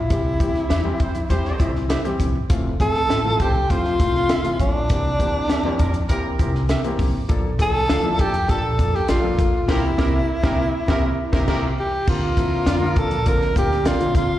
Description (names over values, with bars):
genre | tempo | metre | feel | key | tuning
uptempo 1960s-style soul | 100 BPM | 4/4 | straight | unclear | A4 = 441 Hz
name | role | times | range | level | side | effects
breathy tenor saxophone | melody | 0.0-14.4 s | D4 to Bb4 | -22 LUFS | equal | slapback echo, plate reverb
upright bass | bass | 0.0-14.4 s | F1 to Bb2 | -24 LUFS | equal | none
warm baby grand piano | accompaniment | 0.1-14.3 s | D3 to Bb4 | -27 LUFS | left 3 dB | plate reverb, slapback echo
compact cocktail drum kit | drums | 0.1-14.3 s | crash cymbal, hi-hat, kick drum, snare drum | -22 LUFS | equal | none
congas | percussion | 0.1-14.3 s | none | -36 LUFS | right 1 dB | none
mellow electric guitar | stabs | 0.7-14.0 s | C4 to F5 | -28 LUFS | right 6 dB | tube saturation, plate reverb, slapback echo
clear horn section | second line | 1.0-14.1 s | D4 to C5 | -32 LUFS | right 2 dB | plate reverb, slapback echo
room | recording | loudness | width
light reverb | live gig heard through the venue's PA, recital hall reverb, lossy compression artefacts | -18 LUFS | side -13 dB against mid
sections
0.0-12.1 A section; 12.1-14.4 B section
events
band accent 9.7-12.1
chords
0.1 C; 2.5 Fmaj7; 4.9 C7; 7.3 Bbmaj7; 9.7 C7; 12.1 Bbadd9